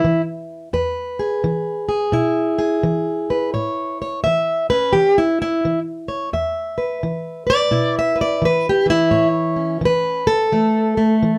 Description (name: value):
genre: acoustic country blues, solo or duo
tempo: 86 BPM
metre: 4/4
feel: swing 64% on 8ths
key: E major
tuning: A4 = 438 Hz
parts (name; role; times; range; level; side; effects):
- fingerpicked plugged-in steel-string acoustic guitar; solo; 0.0-11.4 s; E2 to E5; -19 LUFS; equal; none
room: moderate small room reverb, RT60 0.5 s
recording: close, detailed microphones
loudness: -19 LUFS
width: mono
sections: 0.0-11.4 A section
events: steel-string acoustic guitar solo 0.0-11.4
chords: 0.0 E; 3.5 A; 6.3 E5; 9.1 A